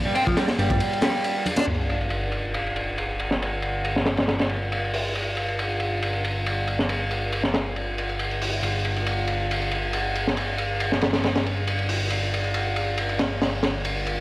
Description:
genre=breakbeat, breaks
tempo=138 BPM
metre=4/4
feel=swing 53% on 16ths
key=unclear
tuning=A4 = 440 Hz
part: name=clean electric guitar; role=riff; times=0.1-1.6 s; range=F3 to D4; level=-26 LUFS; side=right 1 dB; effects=low-pass filter, tape echo
part: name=crunchy breakbeat drum kit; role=drums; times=0.2-14.2 s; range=hi-hat, kick drum, ride cymbal, snare drum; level=-24 LUFS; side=equal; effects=low-pass filter on kick, low-pass filter on cymbals, low-pass filter on hats, low-pass filter on snare, low-pass filter on room
part: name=congas and bongos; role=percussion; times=0.5-1.7 s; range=none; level=-32 LUFS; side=equal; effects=none
part: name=fat analog bass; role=bass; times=0.6-14.2 s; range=G1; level=-29 LUFS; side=equal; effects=none
part: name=sub drop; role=sound effects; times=1.7-3.4 s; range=none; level=-32 LUFS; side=equal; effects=none
room=studio reverb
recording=dry, gritty hardware recording, vinyl crackle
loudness=-22 LUFS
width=side -20 dB against mid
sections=0.0-1.7 A section; 1.7-14.2 B section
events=kick drops out 0.8-1.7; impact 1.7-3.4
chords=none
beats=0.37 0.80 1.24 | 1.67 2.11 2.54 2.98 | 3.41 3.85 4.28 4.72 | 5.15 5.58 6.02 6.46 | 6.89 7.33 7.76 8.19 | 8.63 9.06 9.50 9.93 | 10.37 10.80 11.24 11.67 | 12.11 12.54 12.98 13.41 | 13.85

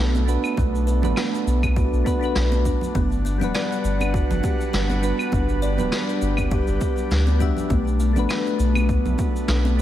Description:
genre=sunset chillout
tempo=101 BPM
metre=4/4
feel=swing 55% on 16ths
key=B minor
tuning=A4 = 438 Hz
part: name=soft electric-piano-like synth keys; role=accompaniment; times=0.0-9.8 s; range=G3 to F#5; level=-28 LUFS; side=moving between left 7 dB and right 8 dB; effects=chorus, tremolo, auto-pan, low-pass filter, digital delay
part: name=airy breathy pad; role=sustained chords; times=0.0-9.8 s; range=G3 to F#5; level=-28 LUFS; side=right 1 dB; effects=chorus
part: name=kalimba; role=arpeggios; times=0.0-9.8 s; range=A3 to D5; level=-30 LUFS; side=left 2 dB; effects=digital delay
part: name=round analog bass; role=bass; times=0.0-9.8 s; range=D1 to D2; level=-21 LUFS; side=equal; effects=none
part: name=cabasa, claves and snare drum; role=drums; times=0.1-9.8 s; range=none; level=-29 LUFS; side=equal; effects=none
part: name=congas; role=percussion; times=0.1-9.8 s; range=none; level=-32 LUFS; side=right 2 dB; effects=none
part: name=electronic kick drum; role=drums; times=0.6-9.3 s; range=none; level=-25 LUFS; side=equal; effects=overdrive
room=light reverb, small room reverb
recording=none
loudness=-19 LUFS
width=side -12 dB against mid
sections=0.0-9.8 A section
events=none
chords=0.0 Bm7; 3.0 Gmaj7; 7.7 Bm7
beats=| 0.58 1.17 1.76 2.36 | 2.95 3.55 4.14 4.73 | 5.33 5.92 6.52 7.11 | 7.70 8.30 8.89 9.49

